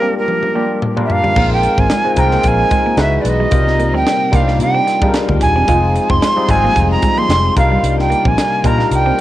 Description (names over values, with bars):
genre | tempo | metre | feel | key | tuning
polished 1980s jazz-funk pop | 111 BPM | 4/4 | swing 54% on 16ths | C minor | A4 = 440 Hz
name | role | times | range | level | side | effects
breathy jazz flute | melody | 0.0-9.2 s | Bb4 to C6 | -16 LUFS | right 2 dB | cassette tape
barky tine electric piano | accompaniment | 0.0-9.2 s | G3 to C5 | -18 LUFS | left 3 dB | overdrive, analog chorus, cassette tape
semi-hollow electric guitar | riff | 0.0-9.2 s | G3 to F4 | -24 LUFS | right 4 dB | wide subtle chorus, cassette tape
crisp fusion drum kit | drums | 0.3-9.2 s | crash cymbal, hi-hat, kick drum, snare drum, toms | -18 LUFS | equal | cassette tape
string machine, full ensemble | sustained chords | 1.4-9.2 s | C3 to D5 | -27 LUFS | left 1 dB | phaser, ensemble chorus, cassette tape
vintage muted fingered electric bass | bass | 1.4-9.1 s | Eb1 to C3 | -17 LUFS | equal | none
room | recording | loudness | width
light reverb, small room ambience | home recording on cassette | -11 LUFS | side -14 dB against mid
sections
0.0-1.4 A section; 1.4-9.2 B section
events
break 0.0-1.4; drum fill 0.3-1.4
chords
0.0 Gm7; 1.4 Bb9sus4; 3.0 Dbm11; 3.5 Cm11; 5.7 Fm7; 7.6 Cm11